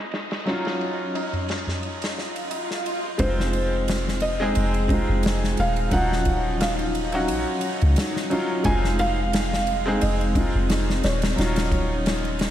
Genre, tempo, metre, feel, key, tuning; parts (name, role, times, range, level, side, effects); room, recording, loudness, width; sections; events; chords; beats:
trip hop; 88 BPM; 4/4; swing 55% on 16ths; F phrygian; A4 = 440 Hz
bright upright piano; accompaniment; 0.0-12.5 s; F3 to Ab4; -26 LUFS; equal; harmonic tremolo, tape echo
bowed-like drone; texture; 0.0-12.5 s; Eb4 to Eb5; -35 LUFS; left 1 dB; built-in reverb, phaser
natural country drum kit; drums; 0.1-12.5 s; kick drum, ride cymbal, snare drum; -28 LUFS; equal; high-pass filter on kick, high-pass filter on cymbals, high-pass filter on snare, high-pass filter on room
tabla; percussion; 1.2-2.7 s; -33 LUFS; equal
swell; sound effects; 2.2-3.2 s; -32 LUFS; right 1 dB
felt-muted upright piano; melody; 3.2-12.5 s; C5 to Ab5; -29 LUFS; equal; vintage 12-bit sampler grit, tape echo
soft 808-style bass; bass; 3.2-12.5 s; Eb1 to Db2; -24 LUFS; equal
moderate lush hall reverb, RT60 2.1 s; dreamy mix soaked in reverb, vinyl crackle, low-pass filter; -21 LUFS; side -11 dB against mid
0.0-3.2 A section; 3.2-12.5 B section
swell 2.2-3.2
0.5 Ebm9; 3.2 Fm7; 5.9 Ebm9; 8.7 Fm7; 11.4 Ebm9
| 0.47 1.15 1.83 2.52 | 3.20 3.88 4.56 5.24 | 5.92 6.61 7.29 7.97 | 8.65 9.33 10.02 10.70 | 11.38 12.06